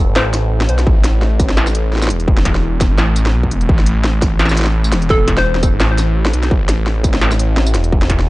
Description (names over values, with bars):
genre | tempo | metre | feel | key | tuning
half-time drum and bass | 170 BPM | 4/4 | swing 55% on 16ths, half-time | A minor | A4 = 436 Hz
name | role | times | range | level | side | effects
phased detuned saw bass | bass | 0.0-8.3 s | E1 to B1 | -15 LUFS | equal | phaser, transformer saturation
hollow square pluck | melody | 0.2-0.4, 5.1-5.6 s | A4 to C5 | -21 LUFS | left 1 dB | chorus, tape echo
industrial drum kit | drums | 0.2-8.3 s | hi-hat, snare drum, tambourine | -19 LUFS | equal | none
electronic kick drum | drums | 0.9-8.2 s | none | -15 LUFS | equal | distortion
room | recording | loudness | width
little or no reverb | dry, gritty hardware recording, nothing above 10.4 kHz | -12 LUFS | side -19 dB against mid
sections
0.0-8.3 A section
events
none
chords
0.0 A5